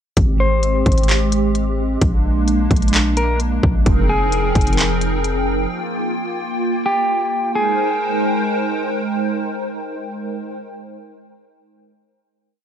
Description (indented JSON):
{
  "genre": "hip hop, atmospheric cloud-rap",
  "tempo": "130 BPM",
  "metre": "4/4",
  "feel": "half-time",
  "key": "Ab lydian",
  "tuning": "A4 = 445 Hz",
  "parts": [
    { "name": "hollow soft pad", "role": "sustained chords", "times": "0.2-10.6 s", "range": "F3 to G5", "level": "-21 LUFS", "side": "right 1 dB", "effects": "ensemble chorus, sidechain pumping" },
    { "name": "warm 808-style bass", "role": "bass", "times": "0.2-5.7 s", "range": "F1 to Bb1", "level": "-19 LUFS", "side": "equal", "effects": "none" },
    { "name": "industrial drum kit", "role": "drums", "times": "0.2-5.4 s", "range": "handclaps, hi-hat, kick drum", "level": "-18 LUFS", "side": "equal", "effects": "vintage 12-bit sampler grit" },
    { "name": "clean electric guitar", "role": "melody", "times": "0.4-8.9 s", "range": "G4 to C5", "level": "-21 LUFS", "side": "equal", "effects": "ping-pong delay" }
  ],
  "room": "light reverb",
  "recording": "none",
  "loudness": "-16 LUFS",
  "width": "side -9 dB against mid",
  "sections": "0.2-7.6 verse; 7.6-11.2 final chord",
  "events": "none",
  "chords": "0.2 Abmaj7; 2.0 Bb7; 3.9 Fm11; 5.7 Gm7; 7.6 Abmaj9"
}